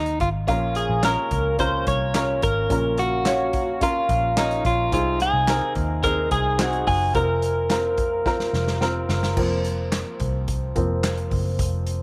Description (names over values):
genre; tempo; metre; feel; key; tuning
piano-driven pop; 108 BPM; 4/4; straight; unclear; A4 = 437 Hz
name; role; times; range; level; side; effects
twelve-string electric guitar; melody; 0.0-8.8 s; Eb4 to Db5; -25 LUFS; equal; warbly pitch drift
vintage muted picked electric bass; bass; 0.0-12.0 s; F1 to Eb2; -28 LUFS; equal; none
natural country drum kit; drums; 0.1-12.0 s; crash cymbal, handclaps, hi-hat, kick drum, snare drum; -30 LUFS; equal; none
warm upright piano; accompaniment; 0.5-12.0 s; Bb2 to F5; -29 LUFS; equal; none
warm French horn section; sustained chords; 0.5-12.0 s; C3 to F5; -40 LUFS; equal; none
room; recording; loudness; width
moderate spring reverb, RT60 2.5 s; none; -22 LUFS; mono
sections
0.0-9.4 A section; 9.4-12.0 B section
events
drum fill 8.3-9.4; upright piano solo 9.4-12.0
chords
0.5 Bbm; 4.9 Ab/C; 7.1 Fsus4